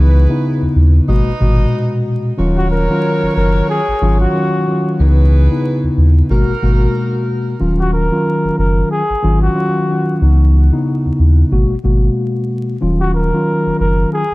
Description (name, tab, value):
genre	hip hop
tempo	92 BPM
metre	4/4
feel	swing 57% on 16ths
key	Eb minor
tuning	A4 = 440 Hz
part	mellow tine electric piano	accompaniment	0.0-14.2 s	Bb2 to Gb4	-16 LUFS	left 1 dB	slow stereo tremolo, cassette tape
part	mellow saxophone section	stabs	0.0-7.3 s	Eb4 to Eb5	-25 LUFS	right 2 dB	ping-pong delay
part	warm sub bass	bass	0.0-14.3 s	Eb1 to Eb2	-12 LUFS	equal	none
part	trumpet with bucket mute	melody	2.6-14.3 s	Gb4 to Bb4	-20 LUFS	equal	ping-pong delay
room	small room ambience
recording	dark, warm production, vinyl crackle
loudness	-12 LUFS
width	side -21 dB against mid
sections	0.0-7.6 A section; 7.6-14.3 B section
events	none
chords	0.0 Dbm9; 1.1 Abm9; 2.4 Ebm9; 5.0 Dbm9; 6.3 Abm9; 7.6 Ebm9; 10.2 Dbm9; 11.5 Abm9; 12.8 Ebm9